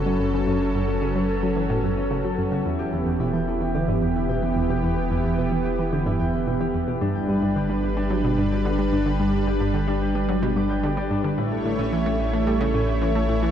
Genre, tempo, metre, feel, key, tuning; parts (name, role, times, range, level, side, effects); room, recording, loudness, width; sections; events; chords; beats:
ambient, sequencer-driven space music; 110 BPM; 4/4; straight; E dorian; A4 = 445 Hz
lush unison pad; sustained chords; 0.0-13.5 s; E3 to C#5; -25 LUFS; right 1 dB; chorus
concert harp; arpeggios; 0.0-13.5 s; C#4 to D6; -28 LUFS; left 2 dB; auto-pan, tape echo
analog pluck; riff; 0.0-13.5 s; E2 to A3; -26 LUFS; right 1 dB; chorus, tape echo
warm sub bass; bass; 0.0-13.5 s; E1 to A1; -28 LUFS; equal
bubbling stepped-filter texture; texture; 0.0-2.7 s; B3 to B4; -42 LUFS; right 1 dB
moderate huge ambient reverb, RT60 7.4 s; dark, warm production; -21 LUFS; side -9 dB against mid
0.0-2.7 A section; 2.7-13.5 B section
0.0 F#m; 2.7 Em; 7.0 G; 11.4 A
| 0.47 1.02 1.56 2.11 | 2.65 3.20 3.74 4.29 | 4.83 5.38 5.93 6.47 | 7.02 7.56 8.11 8.65 | 9.20 9.74 10.29 10.84 | 11.38 11.93 12.47 13.02